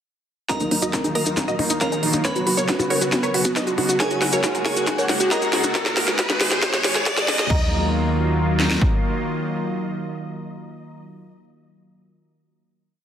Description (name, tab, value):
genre	uplifting trance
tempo	137 BPM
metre	4/4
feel	straight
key	Eb minor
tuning	A4 = 442 Hz
part	wide unison pluck	melody	0.5-11.0 s	Eb4 to F5	-25 LUFS	right 1 dB	sidechain pumping, tape echo
part	glassy synth bell	second line	0.5-11.0 s	Ab4 to B5	-30 LUFS	equal	chorus, tape echo
part	supersaw stab	second line	0.5-11.0 s	Eb4 to F5	-34 LUFS	equal	sidechain pumping, low-pass filter, tape echo
part	lush unison pad	sustained chords	0.5-11.0 s	C#3 to Ab4	-26 LUFS	equal	chorus, sidechain pumping
part	wide unison pluck	arpeggios	0.5-7.7 s	B3 to Gb5	-29 LUFS	equal	flanger, sidechain pumping, tape echo
part	techno drum kit	drums	0.5-8.9 s	kick drum, snare drum	-24 LUFS	equal	high-pass filter on kick, high-pass filter on snare, high-pass filter on room
part	techno drum kit	drums	0.5-7.6 s	crash cymbal, hi-hat, percussion blips, snare drum	-23 LUFS	equal	sidechain pumping on hats, sidechain pumping on perc, sidechain pumping on cymbals
part	maracas	percussion	0.5-5.7 s	none	-29 LUFS	left 2 dB	none
part	riser	sound effects	2.8-7.5 s	none	-28 LUFS	equal	none
part	plucky analog bass	bass	0.6-8.8 s	Eb1 to Gb2	-28 LUFS	equal	sidechain pumping, high-pass filter
room	moderate scoring stage reverb, RT60 2.1 s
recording	dense, heavily limited modern master, high-pass filter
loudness	-18 LUFS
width	side -9 dB against mid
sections	0.5-7.5 build; 7.5-11.0 final chord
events	build-up 0.5-7.5; drum fill 0.5-7.5; filter sweep on synth pluck 0.5-5.8; filter sweep on synth arpeggio sound 0.5-5.8; filter sweep on supersaw synth 0.5-5.8; riser 2.8-7.5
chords	0.5 Ebmadd9; 2.2 Bsus2; 4.0 Gbadd9; 5.8 Abm; 7.5 Ebmadd9